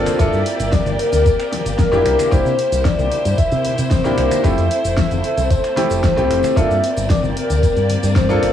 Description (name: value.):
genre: nu-disco, nu disco.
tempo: 113 BPM.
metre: 4/4.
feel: straight.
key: G dorian.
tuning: A4 = 442 Hz.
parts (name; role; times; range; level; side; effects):
soft octave-layered synth lead; melody; 0.0-8.5 s; Bb4 to E5; -19 LUFS; equal; chorus, phaser, cassette tape, analog delay.
bright baby grand piano; accompaniment; 0.0-8.5 s; A3 to A4; -21 LUFS; left 1 dB; sidechain pumping, cassette tape, tape echo.
warm studio violin section; sustained chords; 0.0-8.5 s; A3 to D5; -25 LUFS; left 1 dB; sidechain pumping, cassette tape.
fingered electric bass with an envelope filter; bass; 0.0-8.5 s; F1 to C3; -20 LUFS; equal; none.
pop drum kit; drums; 0.1-8.5 s; finger snaps, hi-hat, shaker, snare drum; -26 LUFS; left 2 dB; overdrive.
congas and tambourine; percussion; 0.1-8.4 s; none; -29 LUFS; left 12 dB; none.
electronic kick drum; drums; 0.2-8.3 s; none; -17 LUFS; equal; none.
room: digital ambience.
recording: home recording on cassette.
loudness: -14 LUFS.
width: side -10 dB against mid.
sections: 0.0-8.5 A section.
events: none.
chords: 0.0 Gm7; 2.1 C7; 4.4 Fmaj7; 6.6 Gm7.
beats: | 0.20 0.73 1.26 1.79 | 2.32 2.85 3.38 3.91 | 4.44 4.97 5.50 6.04 | 6.57 7.10 7.63 8.16.